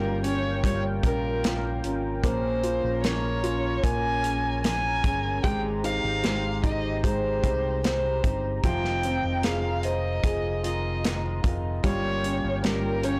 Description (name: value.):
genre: pop ballad.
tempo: 75 BPM.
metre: 4/4.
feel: straight.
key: unclear.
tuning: A4 = 441 Hz.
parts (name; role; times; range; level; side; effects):
dark violin; melody; 0.0-13.2 s; Bb4 to Ab5; -32 LUFS; equal; none.
warm grand piano; accompaniment; 0.0-13.2 s; F3 to C5; -34 LUFS; equal; none.
chorused pulse-width pad; sustained chords; 0.0-13.2 s; Db4 to Bb5; -38 LUFS; equal; plate reverb.
fingerpicked steel-string acoustic guitar; arpeggios; 0.0-13.2 s; F2 to Ab4; -38 LUFS; equal; none.
fingered electric bass; bass; 0.0-13.2 s; F1 to C2; -33 LUFS; equal; none.
natural country drum kit; drums; 0.2-13.2 s; hi-hat, kick drum, snare drum; -30 LUFS; equal; none.
room: moderate booth ambience, RT60 0.2 s.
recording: blown-out, overdriven recording, overdrive.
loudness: -26 LUFS.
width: mono.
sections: 0.0-13.2 A section.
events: none.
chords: 0.0 Gm7b5; 5.4 Abmaj7; 8.6 Fm7; 11.8 Gm7b5.